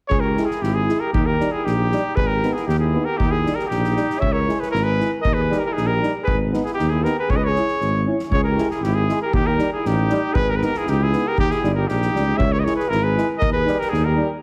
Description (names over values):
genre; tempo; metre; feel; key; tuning
balkan folk, Balkan brass band; 118 BPM; 2/4; straight; C# dorian sharp4; A4 = 440 Hz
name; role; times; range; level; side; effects
clear cornet; melody; 0.1-14.3 s; G4 to E5; -25 LUFS; equal; slapback echo
mellow flugelhorn; second line; 0.1-14.3 s; D#4 to C#5; -30 LUFS; equal; none
mellow tuba; bass; 0.1-14.2 s; G1 to D#2; -25 LUFS; equal; none
soft-mallet drum kit; percussion; 0.1-14.0 s; kick drum, snare drum; -28 LUFS; equal; none
clear trombone; accompaniment; 0.4-14.3 s; G3 to C#4; -32 LUFS; equal; none
warm euphonium; accompaniment; 0.4-14.3 s; D#4 to E4; -31 LUFS; equal; none
room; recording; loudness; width
moderate recital hall reverb, RT60 1.5 s; heavily compressed radio sound; -20 LUFS; mono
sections
0.1-8.3 A section; 8.3-14.4 A section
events
none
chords
0.1 C#m; 1.1 D#; 2.2 G#m; 3.2 D#; 4.2 C#m; 5.2 D#; 6.3 G#m; 7.3 C#m; 9.3 D#; 10.4 G#m; 11.4 D#; 12.4 C#m; 13.4 D#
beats
| 0.12 0.63 | 1.15 1.66 | 2.17 2.69 | 3.20 3.71 | 4.23 4.74 | 5.25 5.76 | 6.27 6.78 | 7.29 7.80 | 8.31 8.82 | 9.33 9.84 | 10.35 10.86 | 11.37 11.88 | 12.39 12.90 | 13.40 13.91